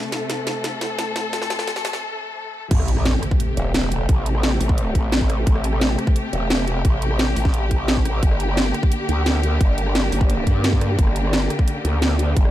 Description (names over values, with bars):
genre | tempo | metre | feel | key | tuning
dark technical drum and bass | 174 BPM | 4/4 | straight | A phrygian | A4 = 439 Hz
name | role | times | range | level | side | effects
rich studio string section | sustained chords | 0.0-12.5 s | C3 to A4 | -25 LUFS | left 1 dB | sidechain pumping
drum and bass drum kit | drums | 0.1-12.5 s | crash cymbal, hi-hat, rim click, snare drum | -24 LUFS | equal | overdrive, high-pass filter on hats, high-pass filter on snare, high-pass filter on cymbals
growl bass | bass | 2.7-12.5 s | E1 to G2 | -21 LUFS | equal | chorus
electronic kick drum | drums | 2.7-12.4 s | none | -18 LUFS | equal | overdrive
impact | sound effects | 2.7-4.1 s | none | -25 LUFS | equal | none
room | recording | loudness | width
digital ambience | dark, warm production, high-pass filter | -18 LUFS | side -13 dB against mid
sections
0.0-2.7 A section; 2.7-12.5 B section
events
build-up 0.0-2.7; drum fill 0.0-2.0; break 2.0-2.7; drop 2.7-12.5; impact 2.7-4.1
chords
0.0 Am; 2.7 Am7; 8.2 Gm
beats
0.30 0.64 0.99 | 1.33 1.68 2.02 2.37 | 2.71 3.06 3.40 3.74 | 4.09 4.43 4.78 5.12 | 5.47 5.81 6.16 6.50 | 6.85 7.19 7.54 7.88 | 8.23 8.57 8.92 9.26 | 9.61 9.95 10.30 10.64 | 10.99 11.33 11.68 12.02 | 12.37